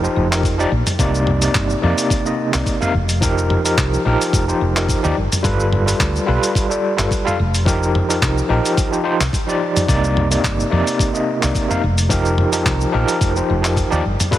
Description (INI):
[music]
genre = sunset chillout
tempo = 108 BPM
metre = 4/4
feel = swing 54% on 16ths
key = unclear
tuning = A4 = 438 Hz
[part]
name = overdriven tine electric piano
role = accompaniment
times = 0.0-14.4 s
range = C3 to F5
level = -18 LUFS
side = equal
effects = medium tremolo, auto-pan, ping-pong delay
[part]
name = woody fretless electric bass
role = bass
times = 0.0-14.4 s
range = F1 to F2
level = -19 LUFS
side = equal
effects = wide subtle chorus
[part]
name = dusty soul sampler-style drum kit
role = drums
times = 0.0-14.4 s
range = handclaps, hi-hat, shaker, toms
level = -22 LUFS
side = equal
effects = overdrive
[part]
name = electronic kick drum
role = drums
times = 0.4-14.4 s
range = none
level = -21 LUFS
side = equal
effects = overdrive
[sound]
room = light reverb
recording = heavily compressed radio sound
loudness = -15 LUFS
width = side -13 dB against mid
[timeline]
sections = 1.0-14.4 A section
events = none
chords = 0.0 F9sus4; 5.2 G9; 7.7 F9sus4